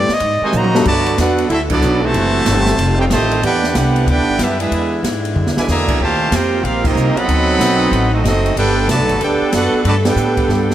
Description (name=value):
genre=jazz, big band swing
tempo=187 BPM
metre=4/4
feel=swing 63% on 8ths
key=G major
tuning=A4 = 440 Hz
part: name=bright trumpet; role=melody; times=0.0-0.6 s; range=D5 to Eb5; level=-21 LUFS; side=equal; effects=tape echo
part: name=warm baby grand piano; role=accompaniment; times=0.0-0.9 s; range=G3 to A4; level=-21 LUFS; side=left 3 dB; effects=analog chorus
part: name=upright bass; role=bass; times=0.0-10.7 s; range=F1 to Bb2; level=-18 LUFS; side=left 1 dB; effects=none
part: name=open jazz drum kit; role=drums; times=0.1-10.7 s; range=crash cymbal, hi-hat, kick drum, ride cymbal, snare drum, toms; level=-21 LUFS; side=equal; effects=none
part: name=bright trumpet section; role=melody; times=0.4-10.7 s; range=B3 to B5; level=-19 LUFS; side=equal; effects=none
part: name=clear trombone section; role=second line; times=0.4-10.7 s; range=Bb2 to G4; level=-18 LUFS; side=right 4 dB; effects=tape echo
part: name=edgy saxophone section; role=sustained chords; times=0.9-10.7 s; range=D3 to A4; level=-24 LUFS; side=left 1 dB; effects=none
room=moderate lush hall reverb, RT60 2.3 s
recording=dreamy mix soaked in reverb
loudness=-13 LUFS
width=side -12 dB against mid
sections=0.9-10.7 A section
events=drum fill 0.5-0.9, 5.4-5.7, 10.5; band accent 1.7, 6.8, 10.0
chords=0.2 Ab9; 0.9 Gmaj9; 2.1 F#m7b5; 2.8 F9; 3.4 Em11; 4.7 E7#11; 6.0 Eb69; 7.3 D7b9; 8.6 Gmaj9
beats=0.22 0.54 | 0.86 1.18 1.51 1.83 | 2.15 2.47 2.79 3.11 | 3.43 3.75 4.08 4.40 | 4.72 5.04 5.36 5.68 | 6.00 6.32 6.64 6.96 | 7.28 7.60 7.92 8.24 | 8.57 8.89 9.21 9.53 | 9.85 10.17 10.49